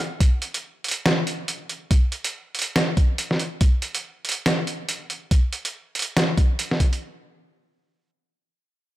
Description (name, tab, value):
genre	deep dubstep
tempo	141 BPM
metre	4/4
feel	swing 59% on 16ths, half-time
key	none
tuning	none
part	electronic kick drum	drums	0.2-6.9 s	none	-18 LUFS	equal	none
part	trip hop sampler-style drum kit	drums	0.2-7.0 s	hi-hat, snare drum	-23 LUFS	equal	none
room	light reverb, digital ambience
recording	none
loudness	-21 LUFS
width	side -15 dB against mid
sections	0.0-7.0 A section; 7.0-9.0 B section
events	none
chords	none